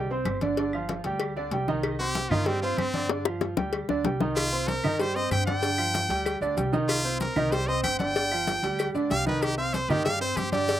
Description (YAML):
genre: latin, salsa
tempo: 190 BPM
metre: 4/4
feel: straight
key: C minor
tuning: A4 = 435 Hz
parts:
  - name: bright upright piano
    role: accompaniment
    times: 0.0-10.8 s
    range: D3 to C6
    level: -28 LUFS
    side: right 2 dB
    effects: none
  - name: upright bass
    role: bass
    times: 0.0-10.8 s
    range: G1 to G2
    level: -32 LUFS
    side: equal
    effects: none
  - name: congas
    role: percussion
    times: 0.1-10.8 s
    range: none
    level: -34 LUFS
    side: left 2 dB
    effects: none
  - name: claves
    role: percussion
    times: 0.3-10.5 s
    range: none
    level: -42 LUFS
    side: right 1 dB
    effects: none
  - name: cowbell and bongos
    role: percussion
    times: 0.3-10.8 s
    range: none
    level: -32 LUFS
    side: left 6 dB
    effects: none
  - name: brilliant trumpet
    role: melody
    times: 2.0-10.8 s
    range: C4 to G5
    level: -28 LUFS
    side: equal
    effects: none
  - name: maracas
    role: percussion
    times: 4.4-10.8 s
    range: none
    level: -46 LUFS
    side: right 6 dB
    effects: none
room: little or no reverb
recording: recorded outdoors, with no room sound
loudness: -24 LUFS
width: side -12 dB against mid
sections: 0.0-10.8 A section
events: trumpet solo 0.0-10.8; drum fill 3.1-4.4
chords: 0.0 G5; 1.8 Cm; 3.1 G5; 4.4 Cm; 5.6 G5; 6.9 Cm; 8.2 G5; 9.4 Cm